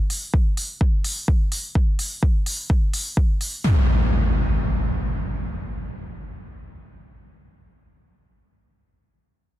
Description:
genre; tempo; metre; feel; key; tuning
melodic techno; 127 BPM; 4/4; straight; none; none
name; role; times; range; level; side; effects
electronic hi-hat; drums; 0.1-3.5 s; none; -27 LUFS; equal; none
electronic kick drum; drums; 0.3-3.3 s; none; -19 LUFS; equal; none
impact; sound effects; 3.6-7.5 s; none; -21 LUFS; equal; none
room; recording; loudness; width
light reverb; dense, heavily limited modern master; -20 LUFS; side -14 dB against mid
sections
0.0-3.6 A section; 3.6-7.4 B section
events
none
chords
none

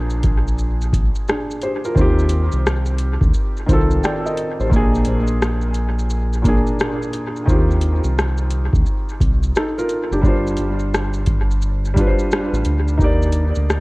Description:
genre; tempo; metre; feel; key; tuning
lo-fi hip hop; 87 BPM; 4/4; swing 63% on 16ths; unclear; A4 = 439 Hz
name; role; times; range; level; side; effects
felt-muted upright piano; accompaniment; 0.0-13.8 s; Bb2 to G5; -21 LUFS; equal; cassette tape, low-pass filter, dub echo
round analog bass; bass; 0.0-13.8 s; F#1 to Eb2; -19 LUFS; equal; none
booming analog drum machine; drums; 0.1-13.8 s; hi-hat, kick drum, rim click, shaker; -20 LUFS; equal; dub echo
room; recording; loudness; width
digital ambience; echo-heavy mix, cassette tape; -16 LUFS; side -23 dB against mid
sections
0.0-13.0 A section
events
none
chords
0.0 Bb7; 2.0 Eb69; 4.7 Bb7; 7.5 Eb69; 10.2 G7sus4; 13.0 Ebmaj7

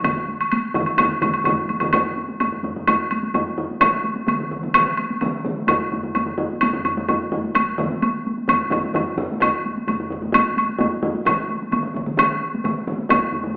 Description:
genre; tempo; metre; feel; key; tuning
japanese traditional, taiko drum ensemble; 129 BPM; 4/4; straight; none; none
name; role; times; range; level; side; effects
solo taiko drums; percussion; 0.0-13.6 s; none; -26 LUFS; equal; none
taiko ensemble; percussion; 0.0-13.6 s; none; -25 LUFS; equal; none
taiko ensemble; percussion; 0.0-13.0 s; none; -28 LUFS; equal; none
taiko ensemble; percussion; 0.0-13.2 s; none; -32 LUFS; equal; none
woodblock; percussion; 0.0-13.2 s; none; -20 LUFS; equal; none
room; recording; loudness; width
wet large studio reverb, RT60 1.3 s; band playing live in one room, AM radio sound; -18 LUFS; side -26 dB against mid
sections
0.0-1.9 A section; 1.9-13.6 B section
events
none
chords
none

